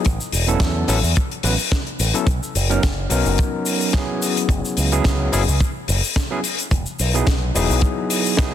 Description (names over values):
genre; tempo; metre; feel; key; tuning
nu-disco, nu disco; 108 BPM; 4/4; swing 54% on 16ths; B major; A4 = 440 Hz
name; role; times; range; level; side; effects
overdriven tine electric piano; accompaniment; 0.0-8.5 s; F#3 to B4; -23 LUFS; moving between left 6 dB and right 5 dB; auto-pan, sidechain pumping, digital delay
tight funk drum kit; drums; 0.0-8.5 s; hi-hat, shaker, snare drum; -23 LUFS; left 4 dB; none
picked electric bass with an envelope filter; bass; 0.1-7.8 s; E1 to E2; -20 LUFS; equal; none
kick drum; drums; 0.1-8.5 s; none; -20 LUFS; equal; soft clipping on snare
room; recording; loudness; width
light reverb, small room ambience; dense, heavily limited modern master; -17 LUFS; side -10 dB against mid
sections
0.0-8.5 A section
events
none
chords
0.1 A69; 2.3 Bmaj7; 4.2 F#7sus4; 6.4 Emaj7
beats
| 0.05 0.61 1.16 1.72 | 2.27 2.83 3.38 3.94 | 4.50 5.05 5.61 6.16 | 6.72 7.27 7.83 8.38